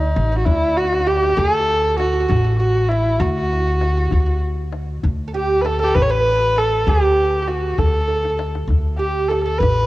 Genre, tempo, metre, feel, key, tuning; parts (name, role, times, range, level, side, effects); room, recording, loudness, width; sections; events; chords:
Persian modal ensemble; 66 BPM (dotted quarters); 6/8; straight; D dastgah mahur; A4 = 439 Hz
rich kamancheh; melody; 0.0-9.9 s; Eb4+41c to C#5; -19 LUFS; equal; cassette tape
oud; second line; 0.0-9.9 s; D4 to B4; -25 LUFS; right 4 dB; cassette tape
upright bass; bass; 0.0-9.9 s; A1 to D2; -20 LUFS; equal
tombak; percussion; 0.2-9.8 s; -24 LUFS; left 2 dB
light reverb, studio reverb; home recording on cassette; -16 LUFS; side -17 dB against mid
0.0-1.4 A section; 1.4-9.9 B section
drum fill 0.8-1.4, 8.1-8.7